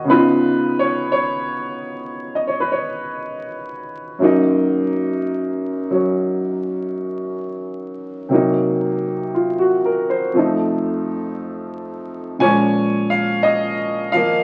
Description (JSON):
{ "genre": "solo jazz", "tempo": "58 BPM", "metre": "4/4", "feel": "swing 69% on 8ths", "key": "unclear", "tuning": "A4 = 442 Hz", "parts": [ { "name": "clear concert grand piano", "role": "solo", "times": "0.0-14.4 s", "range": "F2 to Ab5", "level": "-20 LUFS", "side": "equal", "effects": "none" } ], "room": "wet studio reverb, RT60 0.5 s", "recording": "very old 78 rpm record, vinyl crackle", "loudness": "-19 LUFS", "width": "mono", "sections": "0.0-14.4 A section", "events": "none", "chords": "0.1 Db9; 4.2 Gb6; 8.3 Cm7b5; 10.4 F7; 12.4 Bbm7" }